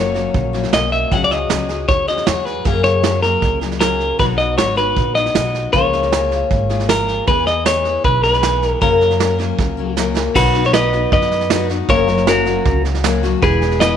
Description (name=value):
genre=honky-tonk and classic country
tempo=156 BPM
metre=4/4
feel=straight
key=B major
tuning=A4 = 436 Hz
part: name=clean electric guitar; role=melody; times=0.0-14.0 s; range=F#4 to F#5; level=-17 LUFS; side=left 1 dB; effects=none
part: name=picked steel-string acoustic guitar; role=accompaniment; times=0.0-14.0 s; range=F#2 to A#4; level=-21 LUFS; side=left 9 dB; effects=none
part: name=upright bass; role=bass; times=0.0-14.0 s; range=E1 to F#2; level=-21 LUFS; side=right 1 dB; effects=none
part: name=vintage brush drum kit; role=drums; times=0.2-13.9 s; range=crash cymbal, hi-hat, kick drum, snare drum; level=-20 LUFS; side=right 4 dB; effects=none
room=light reverb, studio ambience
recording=1960s-style stereo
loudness=-14 LUFS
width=side -8 dB against mid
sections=0.0-10.4 A section; 10.4-14.0 B section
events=drum fill 9.6-10.4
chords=0.0 F#; 1.1 C#sus4; 2.7 F#add9; 4.2 B; 5.7 C#6; 7.3 E; 8.8 F#; 10.4 B; 11.9 F#; 13.4 E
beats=0.35 0.73 | 1.12 1.50 1.89 2.27 | 2.66 3.04 3.43 3.81 | 4.20 4.58 4.97 5.35 | 5.74 6.12 6.51 6.89 | 7.28 7.66 8.05 8.43 | 8.81 9.20 9.59 9.97 | 10.35 10.74 11.12 11.51 | 11.89 12.27 12.66 13.04 | 13.43 13.81